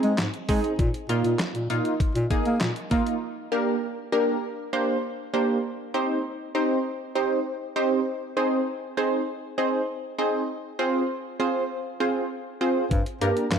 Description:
synth-pop; 99 BPM; 4/4; straight; A4 = 443 Hz
funky polysynth comp; accompaniment; 0.0-13.5 s; Bb3 to C5; -25 LUFS; right 1 dB; chorus
mellow bass clarinet; bass; 0.0-3.0, 12.9-13.6 s; G2 to Bb3; -25 LUFS; equal
detuned 8-bit digital drum machine; drums; 0.0-3.2, 12.9-13.6 s; handclaps, hi-hat, kick drum, snare drum; -27 LUFS; left 1 dB
wet plate reverb, RT60 2.0 s; dreamy mix soaked in reverb; -24 LUFS; side -7 dB against mid
0.0-3.2 A section; 3.2-13.6 B section
0.0 Ab; 0.8 Bbsus4; 3.2 Gm; 5.6 Cm; 8.1 Ab/C; 10.5 Fm; 12.9 Gm

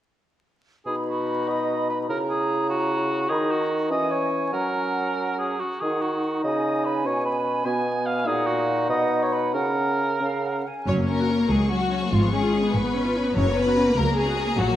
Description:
quick classical-period movement for symphony orchestra; 90-101 BPM (dotted quarters); 6/8; rubato; B major, F# major from 5.8 s; A4 = 440 Hz
mellow clarinet; second line; 0.9-10.6 s; Cb4 to E4; -30 LUFS; left 1 dB
mellow cor anglais; second line; 0.9-10.6 s; F#4 to Ab5; -26 LUFS; right 1 dB
small flute group; second line; 0.9-10.9 s; E#5 to B5; -32 LUFS; right 2 dB
warm bassoon; accompaniment; 0.9-10.6 s; A#2 to F#3; -26 LUFS; right 1 dB
warm studio violin section; melody; 10.9-14.8 s; A#5 to C#6; -36 LUFS; left 4 dB
rich studio violin section; second line; 10.9-14.8 s; E#4 to C#5; -25 LUFS; left 3 dB
rich studio viola section; accompaniment; 10.9-14.8 s; F#3 to F#4; -28 LUFS; equal
mellow French horn section; sustained chords; 10.9-14.8 s; E#3 to C#4; -25 LUFS; left 2 dB
clear studio double bass section; bass; 10.9-14.8 s; F#1 to C#2; -27 LUFS; right 1 dB
warm studio cello section; bass; 10.9-14.8 s; C#2 to A#2; -27 LUFS; right 1 dB
wet scoring stage reverb, RT60 1.4 s; vinyl crackle; -21 LUFS; side -12 dB against mid
0.9-10.9 A section; 10.9-14.8 B section
0.9 B; 2.1 F#7/C#; 3.3 B/D# (rootless); 3.9 C#m/E; 4.5 F#; 5.8 D#m; 7.1 G#m/B; 8.3 F#/A#; 8.9 B; 9.5 F#/C#; 10.9 F#; 12.1 C#7/G#; 13.4 F#

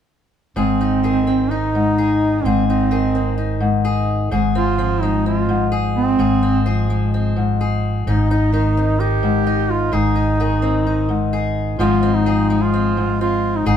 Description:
folk; 128 BPM; 4/4; straight; Ab major; A4 = 440 Hz
mellow duduk; melody; 0.6-13.8 s; C4 to G4; -20 LUFS; right 3 dB
fingerpicked steel-string acoustic guitar; accompaniment; 0.6-13.8 s; Ab2 to Ab4; -19 LUFS; left 5 dB
fingered electric bass; bass; 0.6-13.8 s; Ab1; -21 LUFS; right 2 dB
moderate small room reverb, RT60 0.5 s; band playing live in one room; -15 LUFS; side -9 dB against mid
0.6-13.8 A section
0.6 Ab; 4.3 Fm/Ab; 8.1 Ab; 11.8 Fm/Ab

